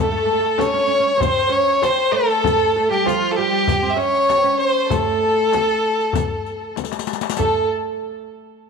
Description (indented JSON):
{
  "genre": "Arabic maqam ensemble",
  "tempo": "97 BPM",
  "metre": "4/4",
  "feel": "straight",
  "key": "A maqam saba",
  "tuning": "A4 = 440 Hz",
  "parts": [
    { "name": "bright violin", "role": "melody", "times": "0.0-7.7 s", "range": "F4 to E5", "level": "-19 LUFS", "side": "equal", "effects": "tape echo" },
    { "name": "oud", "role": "second line", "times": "0.0-7.7 s", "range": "F3 to C#4", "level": "-24 LUFS", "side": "right 11 dB", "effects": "none" },
    { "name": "warm chamber violin section", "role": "second line", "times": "0.0-7.7 s", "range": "F4 to C#5", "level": "-24 LUFS", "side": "left 11 dB", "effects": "none" },
    { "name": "darbuka", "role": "percussion", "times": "0.6-7.7 s", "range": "none", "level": "-29 LUFS", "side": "left 5 dB", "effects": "none" },
    { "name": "frame drum", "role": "percussion", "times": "0.6-7.7 s", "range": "none", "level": "-26 LUFS", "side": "left 6 dB", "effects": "none" },
    { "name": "riq", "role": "percussion", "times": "0.6-7.7 s", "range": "none", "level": "-30 LUFS", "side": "left 13 dB", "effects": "none" }
  ],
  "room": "moderate echo chamber reverb, RT60 2.1 s",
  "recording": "1960s-style stereo with parts hard left and right",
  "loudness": "-16 LUFS",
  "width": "side -5 dB against mid",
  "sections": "0.0-7.4 A section; 7.4-8.7 B section",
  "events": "drum fill 6.8-7.4",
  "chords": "none",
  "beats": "0.59 1.21 1.83 | 2.44 3.06 3.68 4.29 | 4.91 5.53 6.15 6.76 | 7.38"
}